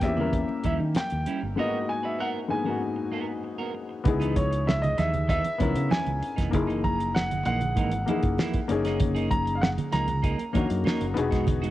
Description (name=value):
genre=lush 1970s-style soul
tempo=97 BPM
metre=4/4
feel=straight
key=C# dorian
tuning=A4 = 440 Hz
part: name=clear baby grand piano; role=melody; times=0.0-11.1 s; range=C#5 to A#5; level=-31 LUFS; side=equal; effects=cassette tape, tape echo
part: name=warm baby grand piano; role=accompaniment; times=0.0-11.7 s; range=G#2 to A#4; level=-30 LUFS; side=left 5 dB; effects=none
part: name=clean electric guitar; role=riff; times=0.0-11.7 s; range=E3 to B4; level=-34 LUFS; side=right 6 dB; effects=none
part: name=fingered electric bass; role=bass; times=0.0-11.7 s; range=E1 to D#3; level=-29 LUFS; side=equal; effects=none
part: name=damped 70s drum kit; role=drums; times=0.0-11.7 s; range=hi-hat, kick drum, snare drum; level=-28 LUFS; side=equal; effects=cassette tape
part: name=congas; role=percussion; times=0.0-11.6 s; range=none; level=-34 LUFS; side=right 6 dB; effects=none
room=small room ambience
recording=home recording on cassette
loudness=-24 LUFS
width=side -14 dB against mid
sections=0.0-4.1 A section; 4.1-11.7 B section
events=break 1.6-4.1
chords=0.0 D#7b9; 1.6 G#m9; 4.1 C#m9; 6.5 F#13; 8.7 F#69; 11.2 Emaj9